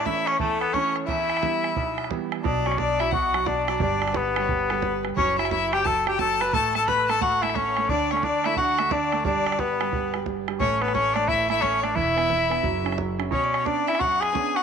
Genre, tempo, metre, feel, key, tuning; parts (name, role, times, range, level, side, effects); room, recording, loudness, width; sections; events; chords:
celtic folk, Celtic hornpipe; 176 BPM; 4/4; swing 63% on 8ths; A4 = 440 Hz
mellow cor anglais; melody; 0.0-14.6 s; A3 to B4; -24 LUFS; left 1 dB
clear fiddle; second line; 0.0-14.6 s; A4 to B5; -28 LUFS; left 11 dB
bright upright piano; accompaniment; 0.0-14.6 s; B1 to D4; -30 LUFS; right 11 dB
bodhran; percussion; 0.0-14.6 s; -31 LUFS; right 5 dB
upright bass; bass; 2.4-13.3 s; E1 to D2; -33 LUFS; left 1 dB
moderate plate reverb, RT60 3.1 s; 1960s-style stereo with parts hard left and right; -21 LUFS; side -7 dB against mid
0.0-2.4 A section; 2.4-13.3 A section; 13.3-14.6 B section
0.0 A; 1.1 Em; 2.4 Bm; 3.8 G; 5.2 F#m; 6.5 A; 7.9 D; 9.2 G; 10.6 Aadd11; 12.0 E5; 12.6 F#5; 13.3 Bmadd9